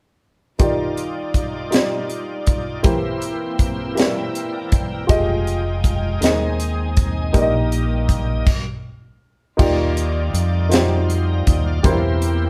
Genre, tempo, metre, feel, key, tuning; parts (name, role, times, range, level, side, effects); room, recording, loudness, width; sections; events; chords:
slow gospel; 53 BPM (dotted quarters); 6/8; straight; Eb major; A4 = 443 Hz
warm upright piano; accompaniment; 0.6-12.5 s; Bb2 to Eb5; -25 LUFS; equal
bright tonewheel organ; sustained chords; 0.6-12.5 s; E3 to C6; -32 LUFS; equal; slow rotary speaker, overdrive, chorus vibrato
warm studio string section; sustained chords; 0.6-12.5 s; E3 to G5; -36 LUFS; equal
crisp fusion drum kit; drums; 0.6-12.4 s; crash cymbal, hi-hat, kick drum, snare drum; -22 LUFS; equal
fingered electric bass; bass; 5.1-12.5 s; F1 to F2; -23 LUFS; equal
light reverb; band playing live in one room; -19 LUFS; mono
0.6-9.6 A section; 9.6-12.5 B section
stop 8.5-9.6
0.6 Ebmaj9; 2.8 C7/E; 5.1 Fm9; 6.2 Ab/Eb; 7.3 Eb/Bb; 8.5 N.C.; 9.6 Ebmaj9; 11.8 C7/E